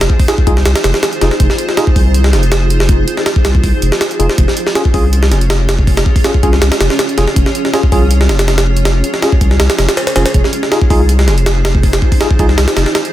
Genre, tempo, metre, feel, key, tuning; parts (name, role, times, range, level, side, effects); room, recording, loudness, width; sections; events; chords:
drum and bass, jungle; 161 BPM; 4/4; straight; F minor; A4 = 440 Hz
granular cloud pad; sustained chords; 0.0-13.1 s; Db4 to Db5; -19 LUFS; equal; built-in reverb, vintage 12-bit sampler grit
saturated sub bass; bass; 0.0-12.9 s; F1 to C2; -12 LUFS; equal
jungle sampler-style drum kit; drums; 0.0-13.1 s; hi-hat, kick drum, snare drum; -12 LUFS; equal; small room ambience
bright tine electric piano; stabs; 0.3-1.8, 4.2-12.5 s; Db4 to Ab4; -20 LUFS; left 1 dB; medium stereo tremolo, vintage 12-bit sampler grit, dub echo
light reverb; dense, heavily limited modern master; -9 LUFS; side -13 dB against mid
0.0-13.1 A section
0.0 Fm7; 4.4 Db/F; 10.3 Fm7